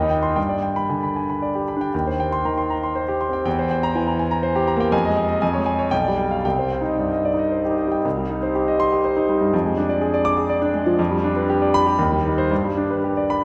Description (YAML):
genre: classical, virtuoso piano study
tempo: 108-126 BPM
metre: 3/4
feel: rubato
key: C minor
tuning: A4 = 440 Hz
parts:
  - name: clear concert grand piano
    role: solo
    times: 0.0-13.4 s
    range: B1 to D6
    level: -21 LUFS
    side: equal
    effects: none
room: wet concert hall reverb, RT60 2.1 s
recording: recorded in a church or concert hall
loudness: -21 LUFS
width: mono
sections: 0.0-8.1 A section; 8.1-13.4 A section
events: none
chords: 0.4 G; 1.9 Cm/Eb; 3.5 C7/E; 4.9 Fm7; 5.4 Db/F; 5.9 G7/B; 6.4 Cm; 9.5 Ddim/F; 11.0 G7/F; 12.0 Cm/Eb; 12.5 G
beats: | 0.37 0.90 1.42 | 1.93 2.44 2.95 | 3.45 3.95 4.43 | 4.92 5.41 5.91 | 6.45 6.99 7.52 | 8.05 8.55 9.04 | 9.53 10.02 10.50 | 10.99 11.49 11.99 | 12.51 13.03